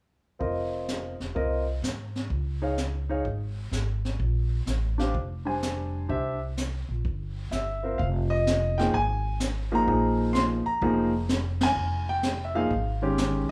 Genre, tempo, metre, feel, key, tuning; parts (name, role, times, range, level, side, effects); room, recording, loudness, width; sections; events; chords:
jazz piano trio; 127 BPM; 4/4; swing 68% on 8ths; F minor from 8.0 s; A4 = 440 Hz
warm concert grand piano; melody; 0.4-13.5 s; Eb3 to C6; -29 LUFS; equal
upright bass; bass; 0.4-13.5 s; E1 to Ab2; -32 LUFS; equal
jazz brush drum kit; drums; 0.4-13.5 s; brushed snare drum, hi-hat, kick drum, ride cymbal, snare drum; -34 LUFS; equal
moderate small room reverb, RT60 0.5 s; studio reverb; -28 LUFS; mono
0.4-8.0 A section; 8.0-13.5 B section
band accent 11.5
0.4 Fm7; 2.3 Db5; 4.2 Bb7; 6.1 C; 8.0 Fm7